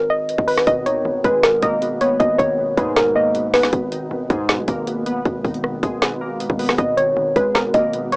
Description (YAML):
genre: hip hop, trap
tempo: 157 BPM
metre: 4/4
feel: half-time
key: G# minor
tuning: A4 = 439 Hz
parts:
  - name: soft round pluck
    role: melody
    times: 0.0-3.7, 6.8-8.2 s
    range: A#4 to D#5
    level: -17 LUFS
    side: equal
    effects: chorus, low-pass filter, cassette tape
  - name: distorted 808-style bass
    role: bass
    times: 0.0-8.2 s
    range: G#1 to G#2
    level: -27 LUFS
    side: equal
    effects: distortion
  - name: trap drum kit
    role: drums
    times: 0.3-8.2 s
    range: hi-hat, kick drum, rim click, snare drum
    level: -20 LUFS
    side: equal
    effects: cassette tape
  - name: glassy digital keys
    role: accompaniment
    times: 0.7-8.2 s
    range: B2 to B3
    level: -24 LUFS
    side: equal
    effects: chorus, low-pass filter, cassette tape
room: light reverb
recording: home recording on cassette, small speaker sound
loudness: -16 LUFS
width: side -28 dB against mid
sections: 0.0-8.2 A section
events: break 3.7-6.8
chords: 0.0 G#m; 0.7 G#madd9